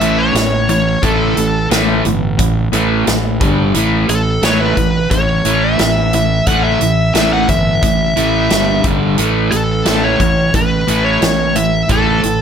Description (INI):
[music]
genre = hard rock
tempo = 88 BPM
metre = 4/4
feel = straight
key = A mixolydian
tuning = A4 = 439 Hz
[part]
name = bluesy overdriven lead guitar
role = melody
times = 0.0-12.4 s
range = A4 to F#5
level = -16 LUFS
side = left 1 dB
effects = distortion, slapback echo
[part]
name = crunchy overdriven guitar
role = riff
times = 0.0-12.4 s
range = G2 to A3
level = -18 LUFS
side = right 10 dB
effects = none
[part]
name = overdriven semi-hollow guitar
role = riff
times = 0.0-12.4 s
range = G2 to A3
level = -20 LUFS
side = left 14 dB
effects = none
[part]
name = fuzz fingered electric bass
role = bass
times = 0.0-12.4 s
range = G1 to A1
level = -18 LUFS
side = equal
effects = overdrive
[part]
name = huge arena drum kit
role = drums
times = 0.0-12.4 s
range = hi-hat, kick drum, snare drum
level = -18 LUFS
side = equal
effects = none
[sound]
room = light reverb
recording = none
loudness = -11 LUFS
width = side -8 dB against mid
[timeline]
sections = 0.0-12.4 A section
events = none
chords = 0.0 A5; 3.4 G5; 3.7 A5; 8.5 G5; 9.2 A5